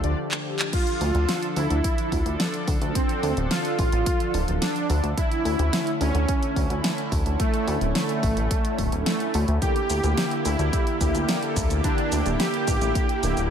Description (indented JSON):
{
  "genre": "synthwave",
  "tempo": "108 BPM",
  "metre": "4/4",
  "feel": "straight",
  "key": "D minor",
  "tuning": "A4 = 442 Hz",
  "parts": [
    { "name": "soft supersaw", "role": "melody", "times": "0.0-13.4 s", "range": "A3 to G4", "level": "-28 LUFS", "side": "right 1 dB", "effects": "digital delay" },
    { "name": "lush unison pad", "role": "sustained chords", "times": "0.0-13.5 s", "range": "D3 to A4", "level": "-30 LUFS", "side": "right 1 dB", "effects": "chorus, phaser, sidechain pumping" },
    { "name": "mellow synth brass", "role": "stabs", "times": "0.0-0.2, 9.6-13.5 s", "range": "D3 to D5", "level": "-30 LUFS", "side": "left 3 dB", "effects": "chorus, digital delay" },
    { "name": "chorused synth bass", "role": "bass", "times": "0.0-13.5 s", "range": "D1 to D2", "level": "-24 LUFS", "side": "equal", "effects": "sidechain pumping" },
    { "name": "pop drum kit", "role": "drums", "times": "0.0-13.5 s", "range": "crash cymbal, handclaps, hi-hat, shaker, snare drum", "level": "-29 LUFS", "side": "equal", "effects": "none" },
    { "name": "electronic kick drum", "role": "drums", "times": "0.7-13.1 s", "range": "none", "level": "-26 LUFS", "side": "equal", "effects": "none" }
  ],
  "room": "little or no reverb",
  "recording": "none",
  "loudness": "-21 LUFS",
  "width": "side -8 dB against mid",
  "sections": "0.7-13.5 A section",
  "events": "break 0.2-0.7; drum fill 0.3-0.7",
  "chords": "0.0 Dm; 5.2 A/D; 9.6 Edim/D"
}